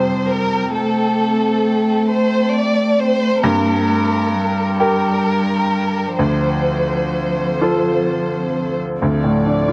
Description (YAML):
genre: neoclassical piano and strings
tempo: 43 BPM (dotted quarters)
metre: 6/8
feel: uneven beats, rubato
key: D minor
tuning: A4 = 437 Hz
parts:
  - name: rich chamber violin section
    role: melody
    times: 0.0-9.7 s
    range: A4 to D5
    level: -22 LUFS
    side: equal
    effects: none
  - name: warm cello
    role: second line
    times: 0.0-9.7 s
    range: F3 to Bb3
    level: -23 LUFS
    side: equal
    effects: none
  - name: bright baby grand piano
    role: accompaniment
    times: 0.0-9.7 s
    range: D2 to Bb4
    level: -22 LUFS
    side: equal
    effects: none
  - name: deep dark ambient pad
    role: sustained chords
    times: 0.0-9.7 s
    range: C4 to Bb5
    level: -29 LUFS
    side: equal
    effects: chorus, built-in reverb
room: wet spring reverb, RT60 2.0 s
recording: worn, warbling old tape, cassette tape, warbly pitch drift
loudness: -18 LUFS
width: mono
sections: 0.0-9.0 A section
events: none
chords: 0.0 Fadd9; 3.4 Gm; 6.2 Dm7; 9.0 Dm